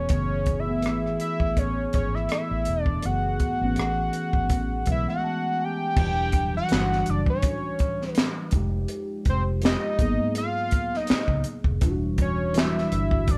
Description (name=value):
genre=R&B, neo-soul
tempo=82 BPM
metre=4/4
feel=swing 54% on 16ths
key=F# minor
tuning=A4 = 440 Hz
part: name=fat analog lead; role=melody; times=0.0-13.4 s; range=C5 to G5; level=-30 LUFS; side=equal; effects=none
part: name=mellow tine electric piano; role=accompaniment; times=0.0-13.4 s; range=E3 to A5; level=-31 LUFS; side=equal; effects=phaser
part: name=vintage muted fingered electric bass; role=bass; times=0.0-13.4 s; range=E1 to G#2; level=-31 LUFS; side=equal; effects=none
part: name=compact cocktail drum kit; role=drums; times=0.1-13.4 s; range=crash cymbal, handclaps, hi-hat, kick drum, rim click, snare drum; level=-28 LUFS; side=equal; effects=none
room=light reverb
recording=band playing live in one room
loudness=-25 LUFS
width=mono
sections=0.0-6.0 A section; 6.0-13.4 B section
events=tine electric piano fill 4.5-6.0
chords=0.0 F#m11; 6.0 Em9; 8.5 Fm9; 10.0 G#m9; 11.8 Em9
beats=| 0.11 0.84 1.57 2.30 | 3.03 3.77 4.50 5.23 | 5.96 6.69 7.42 8.15 | 8.89 9.62 10.35 11.08 | 11.81 12.54 13.28